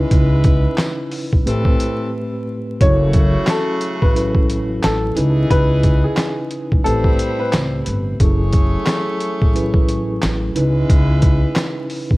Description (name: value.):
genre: hip hop, boom-bap hip-hop.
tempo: 89 BPM.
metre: 4/4.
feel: swing 59% on 16ths.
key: F# minor.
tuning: A4 = 440 Hz.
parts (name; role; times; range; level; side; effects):
mellow tine electric piano; accompaniment; 0.0-12.2 s; A2 to B4; -22 LUFS; equal; medium stereo tremolo, cassette tape, high-pass filter, low-pass filter.
clear saxophone section; stabs; 0.0-11.9 s; C#3 to C#5; -26 LUFS; equal; high-pass filter, low-pass filter, tape echo.
upright bass; bass; 0.0-12.2 s; F#1 to C#2; -18 LUFS; equal; none.
boom bap sampler-style drum kit; drums; 0.1-12.2 s; handclaps, hi-hat, kick drum, snare drum; -17 LUFS; equal; none.
tambourine; percussion; 0.8-11.8 s; none; -39 LUFS; right 2 dB; none.
clear upright piano; melody; 2.8-7.5 s; G#4 to C#5; -22 LUFS; left 1 dB; high-pass filter, low-pass filter, tape echo.
room: studio reverb.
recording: worn, warbling old tape, cassette tape, vinyl crackle, warbly pitch drift.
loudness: -14 LUFS.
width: side -20 dB against mid.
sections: 0.0-12.2 A section.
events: break 2.1-2.8.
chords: 0.0 C#m9; 1.5 Am9; 2.8 F#m7; 5.2 C#m9; 6.9 Am9; 8.2 F#m9; 10.6 C#m9.